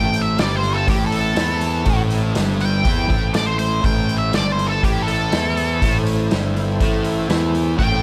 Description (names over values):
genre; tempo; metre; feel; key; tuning
blues rock power trio and southern rock; 122 BPM; 4/4; straight; A minor; A4 = 439 Hz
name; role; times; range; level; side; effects
octave-fuzz lead guitar; melody; 0.0-8.0 s; G4 to G5; -24 LUFS; equal; wah, distortion, slapback echo
percussive tonewheel organ; sustained chords; 0.0-8.0 s; C4 to C5; -34 LUFS; equal; none
fuzz guitar; riff; 0.0-8.0 s; G2 to E4; -25 LUFS; equal; distortion
fuzz fingered electric bass; bass; 0.0-8.0 s; G1 to E2; -24 LUFS; equal; overdrive
vintage drum kit; drums; 0.1-7.9 s; hi-hat, kick drum, snare drum; -25 LUFS; equal; none
room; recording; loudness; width
little or no reverb; none; -19 LUFS; mono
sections
0.0-8.0 A section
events
none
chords
0.0 Am